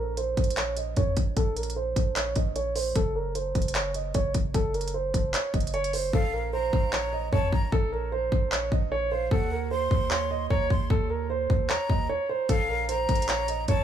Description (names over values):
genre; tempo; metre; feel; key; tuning
hip hop, trap; 151 BPM; 4/4; half-time; Bb harmonic minor; A4 = 440 Hz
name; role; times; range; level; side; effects
dark grand piano; melody; 0.0-13.8 s; A4 to Eb5; -28 LUFS; right 3 dB; low-pass filter, tape echo
long sustained 808-style bass; bass; 0.0-13.8 s; F#1 to F2; -31 LUFS; right 1 dB; none
trap drum kit; drums; 0.2-13.8 s; handclaps, hi-hat, kick drum; -27 LUFS; equal; none
breathy jazz flute; second line; 6.1-13.8 s; F5 to C6; -33 LUFS; left 3 dB; tape echo
room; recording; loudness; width
light reverb; none; -24 LUFS; side -9 dB against mid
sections
0.0-13.8 A section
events
filter sweep on grand piano 0.0-6.1; hi-hats muted 6.1-12.5; break 12.1-12.5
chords
0.0 Bbsus2; 3.0 F#(b5, no3); 6.1 Bbsus2; 9.3 Eb5; 12.5 Bbsus2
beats
0.17 0.57 0.97 | 1.37 1.76 2.16 2.56 | 2.96 3.35 3.75 4.15 | 4.54 4.94 5.34 5.74 | 6.13 6.53 6.93 7.33 | 7.72 8.12 8.52 8.92 | 9.31 9.71 10.11 10.51 | 10.90 11.30 11.70 12.10 | 12.49 12.89 13.29 13.68